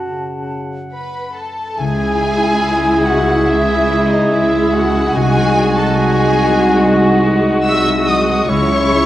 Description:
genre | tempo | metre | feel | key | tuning
classical, slow romantic movement for symphony orchestra | 72 BPM | 4/4 | rubato | C# minor | A4 = 440 Hz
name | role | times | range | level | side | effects
clear clarinet | second line | 0.0-9.1 s | F#4 to E5 | -24 LUFS | equal | none
mellow hollow concert flute | second line | 0.0-9.1 s | D#5 to E6 | -22 LUFS | equal | none
warm oboe | second line | 0.0-9.1 s | E5 to G#5 | -25 LUFS | equal | none
concert harp | arpeggios | 0.0-9.1 s | F#2 to D#6 | -24 LUFS | left 4 dB | none
mellow French horn section | sustained chords | 0.1-9.1 s | C#3 to E4 | -20 LUFS | left 1 dB | none
warm studio violin section | melody | 0.9-9.1 s | D#5 to E6 | -23 LUFS | left 2 dB | none
warm studio violin section | second line | 0.9-9.1 s | D#4 to E5 | -24 LUFS | left 1 dB | none
rich studio viola section | accompaniment | 1.8-9.1 s | G#3 to F#4 | -20 LUFS | right 1 dB | none
warm trumpet | stabs | 1.8-9.1 s | E4 to G#4 | -21 LUFS | equal | none
warm studio cello section | bass | 1.8-9.1 s | B#1 to C#2 | -20 LUFS | right 2 dB | none
warm studio double bass section | bass | 1.8-9.1 s | B#1 to C#2 | -23 LUFS | right 2 dB | none
room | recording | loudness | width
wet scoring stage reverb, RT60 1.8 s | worn, warbling old tape, cassette tape, warbly pitch drift | -11 LUFS | side -14 dB against mid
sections
0.0-1.8 A section; 1.8-9.1 B section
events
none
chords
0.0 F#m; 1.8 C#m; 5.2 G#7/B#; 8.5 C#m

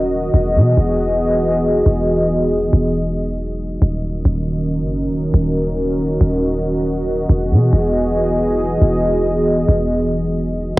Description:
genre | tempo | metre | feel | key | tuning
hip hop | 138 BPM | 4/4 | half-time | unclear | A4 = 440 Hz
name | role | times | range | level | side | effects
dark analog pad | sustained chords | 0.0-10.7 s | Eb3 to Eb5 | -17 LUFS | equal | chorus, sidechain pumping, cassette tape
warm 808-style bass | bass | 0.0-10.7 s | Eb1 to B2 | -19 LUFS | equal | none
room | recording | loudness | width
light reverb | home recording on cassette | -15 LUFS | side -19 dB against mid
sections
0.0-10.8 A section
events
none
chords
0.3 Emaj7; 3.8 Ebm7; 7.3 Emaj7

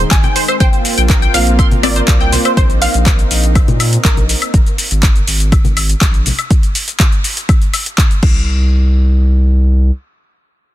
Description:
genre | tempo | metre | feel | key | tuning
progressive house | 122 BPM | 4/4 | straight | unclear | A4 = 440 Hz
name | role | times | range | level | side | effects
lush unison pad | sustained chords | 0.0-4.5 s | Eb3 to F4 | -22 LUFS | right 1 dB | chorus, sidechain pumping
tight sequenced synth | arpeggios | 0.0-2.5 s | C4 to C6 | -19 LUFS | equal | chorus, phaser, sidechain pumping, digital delay
felt-muted upright piano | stabs | 0.0-2.8 s | Bb3 to D5 | -23 LUFS | left 1 dB | sidechain pumping, digital delay
saturated sub bass | bass | 0.0-9.9 s | Ab1 to Bb2 | -13 LUFS | equal | sidechain pumping
deep house drum kit | drums | 0.0-8.3 s | crash cymbal, handclaps, hi-hat, shaker, woodblock | -18 LUFS | left 1 dB | overdrive
wide unison pluck | melody | 0.1-4.5 s | Bb4 to Ab5 | -21 LUFS | right 1 dB | sidechain pumping, digital delay
electronic kick drum | drums | 0.1-8.3 s | none | -11 LUFS | equal | overdrive
congas | percussion | 0.2-6.4 s | none | -21 LUFS | left 4 dB | sidechain pumping on perc
room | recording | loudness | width
digital ambience | dense, heavily limited modern master | -10 LUFS | side -14 dB against mid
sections
0.0-8.5 A section; 8.5-10.7 B section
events
drop 0.0-8.5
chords
0.0 Ab; 0.6 Bbsus2; 4.5 Absus2; 8.2 N.C.

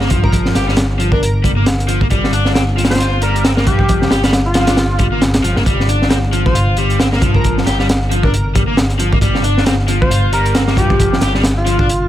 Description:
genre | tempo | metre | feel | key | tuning
breakbeat, breaks | 135 BPM | 4/4 | swing 58% on 16ths | G minor | A4 = 442 Hz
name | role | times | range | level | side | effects
crunchy overdriven guitar | riff | 0.0-11.9 s | F3 to G4 | -19 LUFS | left 1 dB | tube saturation, digital delay
overdriven fingered electric bass | bass | 0.0-12.1 s | G1 to G2 | -17 LUFS | equal | tube saturation
crunchy breakbeat drum kit | drums | 0.0-12.0 s | hi-hat, kick drum, snare drum | -15 LUFS | equal | none
airy dreamy lead | melody | 0.2-12.1 s | F4 to C5 | -21 LUFS | equal | chorus, AM radio sound, digital delay
room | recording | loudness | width
small room ambience | none | -12 LUFS | side -12 dB against mid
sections
0.0-12.1 A section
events
none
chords
none

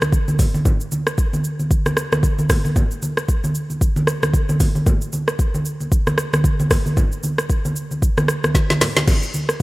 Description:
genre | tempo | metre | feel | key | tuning
amapiano | 114 BPM | 4/4 | swing 58% on 16ths | none | none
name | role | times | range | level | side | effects
afro-pop drum kit | drums | 0.0-9.6 s | crash cymbal, hi-hat, kick drum, rim click, shaker, snare drum | -18 LUFS | equal | overdrive
congas | percussion | 0.0-9.5 s | none | -21 LUFS | right 1 dB | none
room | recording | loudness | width
light reverb | rough home demo mix | -16 LUFS | side -20 dB against mid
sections
0.0-9.1 A section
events
drop 0.0-9.1; drum fill 8.5-9.1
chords
none

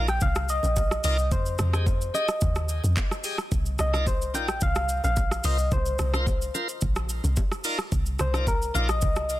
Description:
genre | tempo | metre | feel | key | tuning
amapiano | 109 BPM | 4/4 | straight | C minor | A4 = 439 Hz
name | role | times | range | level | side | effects
bright tonewheel organ | stabs | 0.0-8.9 s | Eb4 to Eb5 | -34 LUFS | left 1 dB | overdrive, slow rotary speaker, tape echo
deep log drum bass | bass | 0.0-9.4 s | Bb1 to F2 | -26 LUFS | equal | none
soft struck synth lead | melody | 0.1-9.4 s | Bb4 to G5 | -29 LUFS | left 1 dB | chorus, tape echo
smooth R&B drum kit | drums | 0.1-9.4 s | handclaps, hi-hat, kick drum, rim click, shaker | -28 LUFS | equal | none
congas and bongos | percussion | 0.2-9.2 s | none | -38 LUFS | right 3 dB | none
room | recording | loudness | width
little or no reverb | dense, heavily limited modern master | -23 LUFS | side -15 dB against mid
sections
0.0-9.4 A section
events
none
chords
0.0 Cm11; 1.3 Fm9; 3.5 Cm11; 5.4 Bbsus2; 7.6 Cm11

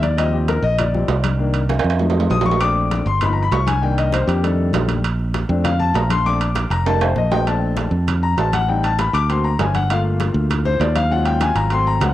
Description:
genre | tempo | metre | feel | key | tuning
Afro-Cuban jazz | 198 BPM | 4/4 | straight | Bb major | A4 = 440 Hz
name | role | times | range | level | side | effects
warm concert grand piano | accompaniment | 0.0-12.1 s | Eb3 to Eb6 | -20 LUFS | left 4 dB | cassette tape
fingered electric bass | bass | 0.0-12.1 s | F1 to F2 | -19 LUFS | right 1 dB | none
congas | percussion | 0.0-12.1 s | none | -29 LUFS | left 6 dB | none
timbales | percussion | 0.0-12.1 s | none | -24 LUFS | right 7 dB | none
room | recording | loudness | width
light reverb, studio ambience | home recording on cassette | -16 LUFS | side -14 dB against mid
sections
0.0-7.5 A section; 7.5-12.1 A section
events
grand piano solo 0.0-12.1; drum fill 1.7-2.6, 6.9-7.5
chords
0.2 Eb6; 1.4 Cm7; 2.0 F7b9; 2.6 Bbmaj9; 3.2 Gaug7; 3.8 Cm7; 4.4 F13; 5.0 Bbmaj9; 6.9 F7; 7.5 Bbmaj9; 8.7 Am7b5; 9.3 Daug7; 9.9 Gm9; 11.1 Ebm11

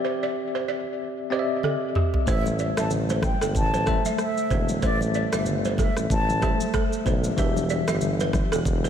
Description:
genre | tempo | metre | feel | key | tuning
afrobeats | 94 BPM | 4/4 | swing 58% on 16ths | A minor | A4 = 440 Hz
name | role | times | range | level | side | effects
bell-like tine electric piano | accompaniment | 0.0-8.9 s | E3 to E5 | -28 LUFS | left 2 dB | medium stereo tremolo
balafon | riff | 0.0-8.9 s | G4 to E5 | -31 LUFS | right 7 dB | ping-pong delay
afro-pop drum kit | drums | 1.6-8.9 s | kick drum, rim click, shaker, toms | -26 LUFS | equal | none
mellow concert flute | melody | 2.3-6.6 s | D5 to A5 | -30 LUFS | left 1 dB | ping-pong delay
warm tuba | bass | 2.3-8.9 s | E1 to B1 | -27 LUFS | equal | none
congas | percussion | 2.5-8.9 s | none | -32 LUFS | right 1 dB | none
room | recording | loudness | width
moderate church reverb, RT60 3.0 s | dreamy mix soaked in reverb | -22 LUFS | side -9 dB against mid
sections
0.0-8.9 A section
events
drum fill 1.6-2.3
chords
0.0 Cadd9; 2.3 Am; 7.4 Em7

